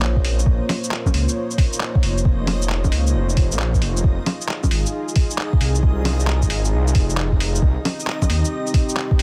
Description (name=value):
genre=future garage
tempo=134 BPM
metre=4/4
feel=swing 66% on 16ths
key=Bb dorian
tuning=A4 = 438 Hz
part: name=dark analog pad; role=sustained chords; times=0.0-9.2 s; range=Bb3 to Db5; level=-29 LUFS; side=equal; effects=chorus, sidechain pumping
part: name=swelling detuned saw bass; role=bass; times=0.0-9.2 s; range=F1 to Eb2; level=-22 LUFS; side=equal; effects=sidechain pumping
part: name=lo-fi sampler-style drum kit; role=drums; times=0.0-9.2 s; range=bongos, handclaps, hi-hat, shaker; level=-27 LUFS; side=equal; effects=overdrive, studio reverb
part: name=backwards swelling texture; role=texture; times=0.0-9.2 s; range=Eb4 to Eb5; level=-38 LUFS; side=equal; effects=built-in reverb
part: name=electronic kick drum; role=drums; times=0.2-9.2 s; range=none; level=-20 LUFS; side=equal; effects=studio reverb
room=little or no reverb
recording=dense, heavily limited modern master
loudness=-20 LUFS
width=mono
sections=0.0-9.2 A section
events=none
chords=0.0 Bbmadd9; 4.0 Fm7; 7.6 Cm